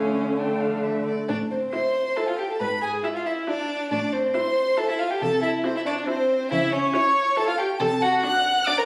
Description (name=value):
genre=quick classical-period movement for string quartet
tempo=138 BPM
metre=3/4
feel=straight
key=A minor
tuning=A4 = 440 Hz
part: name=rich violin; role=melody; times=0.0-8.8 s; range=C5 to F#6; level=-28 LUFS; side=equal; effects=none
part: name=dark violin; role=second line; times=0.0-8.9 s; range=C4 to F#5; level=-26 LUFS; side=equal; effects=none
part: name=rich viola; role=accompaniment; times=0.0-8.9 s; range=A3 to E4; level=-32 LUFS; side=equal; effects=none
part: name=warm cello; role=bass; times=0.0-8.1 s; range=G#2 to D3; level=-33 LUFS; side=equal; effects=none
room=wet scoring stage reverb, RT60 1.5 s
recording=recorded on a phone in the room, club reverb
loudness=-24 LUFS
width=mono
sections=0.0-1.3 A section; 1.3-8.9 B section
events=none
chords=0.0 Dm; 1.3 Am; 2.6 E7/G#; 3.9 Am; 5.2 C69; 6.5 C#dim; 7.8 D7/C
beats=0.39 0.84 | 1.29 1.73 2.17 | 2.61 3.05 3.48 | 3.91 4.35 4.78 | 5.22 5.65 6.08 | 6.51 6.94 7.37 | 7.80 8.23 8.67